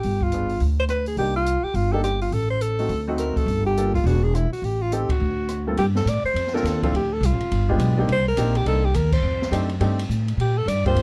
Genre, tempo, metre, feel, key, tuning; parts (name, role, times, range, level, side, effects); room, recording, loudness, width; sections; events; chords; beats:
jazz, small-group swing and bop; 208 BPM; 4/4; swing 61% on 8ths; G minor; A4 = 440 Hz
breathy alto saxophone; melody; 0.0-11.0 s; E4 to D5; -27 LUFS; equal
upright bass; bass; 0.0-11.0 s; E1 to Bb2; -25 LUFS; equal
open jazz drum kit; drums; 0.0-11.0 s; crash cymbal, hi-hat, kick drum, ride cymbal, rim click, snare drum; -32 LUFS; equal
clear upright piano; accompaniment; 0.3-11.0 s; G2 to Bb4; -29 LUFS; equal
light reverb; dark, warm production; -22 LUFS; mono
0.0-5.8 A section; 5.8-11.0 B section
band accent 5.1, 9.1
0.0 G7b9; 1.2 Cm9; 2.3 Adim; 2.9 D7b9; 3.5 Gm9; 4.1 E7; 4.6 Am7b5; 5.2 D7; 5.8 Gm11; 6.9 Dm7; 7.5 G7b9; 8.1 Cm9; 9.2 F13; 10.4 Bb6
| 0.03 0.32 0.60 0.89 | 1.18 1.47 1.75 2.04 | 2.33 2.62 2.90 3.19 | 3.48 3.77 4.06 4.34 | 4.63 4.92 5.21 5.50 | 5.78 6.07 6.36 6.65 | 6.93 7.22 7.51 7.80 | 8.09 8.37 8.66 8.95 | 9.24 9.53 9.81 10.10 | 10.39 10.68 10.96